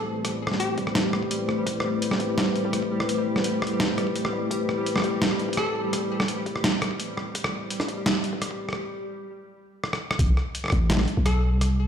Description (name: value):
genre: half-time drum and bass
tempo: 169 BPM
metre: 4/4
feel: half-time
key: A minor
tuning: A4 = 439 Hz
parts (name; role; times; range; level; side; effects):
- hollow square pluck; melody; 0.0-1.0, 5.6-5.8, 11.3-11.5 s; G4 to A4; -32 LUFS; left 1 dB; chorus, ping-pong delay
- dark analog pad; sustained chords; 0.0-8.7 s; A3 to C5; -29 LUFS; left 2 dB; chorus, sidechain pumping
- growling 808-style bass; bass; 0.0-11.9 s; A1 to C2; -24 LUFS; equal; high-pass filter
- pulsing gated texture; texture; 0.0-8.8 s; G3 to G4; -31 LUFS; equal; chorus, built-in reverb
- boom bap sampler-style drum kit; drums; 0.2-11.7 s; hi-hat, rim click, snare drum; -27 LUFS; equal; small room ambience
- electronic kick drum; drums; 0.8-10.3 s; none; -26 LUFS; equal; high-pass filter on kick, small room ambience
room: moderate echo chamber reverb, RT60 1.5 s, digital ambience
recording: played on a big sound system in a bare room, large studio reverb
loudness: -23 LUFS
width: side -8 dB against mid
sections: 0.0-10.2 A section; 10.2-11.9 B section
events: build-up 0.0-10.2; break 8.8-10.2; drum fill 9.8-10.2; drop 10.2-11.9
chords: 0.0 Amadd9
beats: | 0.25 0.60 0.96 1.31 | 1.67 2.02 2.38 2.73 | 3.09 3.44 3.80 4.15 | 4.51 4.86 5.22 5.57 | 5.93 6.28 6.64 6.99 | 7.35 7.70 8.06 8.41 | 8.77 9.12 9.48 9.84 | 10.19 10.54 10.90 11.26 | 11.61